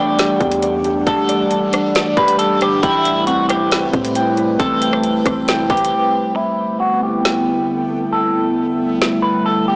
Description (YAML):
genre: hip hop, atmospheric cloud-rap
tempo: 136 BPM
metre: 4/4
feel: half-time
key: G major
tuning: A4 = 441 Hz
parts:
  - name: semi-hollow electric guitar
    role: melody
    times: 0.0-9.8 s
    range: E4 to B4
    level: -21 LUFS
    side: equal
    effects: lush chorus, low-pass filter, digital delay
  - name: warbly tape-like pad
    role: sustained chords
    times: 0.0-9.8 s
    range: C3 to F#5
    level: -22 LUFS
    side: equal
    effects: chorus, built-in reverb, sidechain pumping, low-pass filter
  - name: Celtic harp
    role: arpeggios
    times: 0.0-8.3 s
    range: B3 to G5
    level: -23 LUFS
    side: equal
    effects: digital delay
  - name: long sustained 808-style bass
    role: bass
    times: 0.0-5.9 s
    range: E1 to A2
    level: -33 LUFS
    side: equal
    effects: transformer saturation
  - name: backwards swelling texture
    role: texture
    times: 0.1-9.8 s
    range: G3 to G5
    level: -32 LUFS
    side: equal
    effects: built-in reverb
  - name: trap drum kit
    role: drums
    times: 0.2-9.1 s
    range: hi-hat, kick drum, rim click, snare drum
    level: -22 LUFS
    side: equal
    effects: none
room: light reverb, digital ambience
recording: blown-out, overdriven recording, overdrive, small speaker sound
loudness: -17 LUFS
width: mono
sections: 0.0-6.4 A section; 6.4-9.8 B section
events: drums muted 5.9-6.4; filter sweep 6.4-9.8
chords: 0.0 Em11; 2.8 Am9; 6.4 G69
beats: 0.18 0.63 | 1.07 1.51 1.95 2.39 | 2.83 3.27 3.71 4.16 | 4.60 5.04 5.48 5.92 | 6.36 6.80 7.24 7.68 | 8.13 8.57 9.01 9.45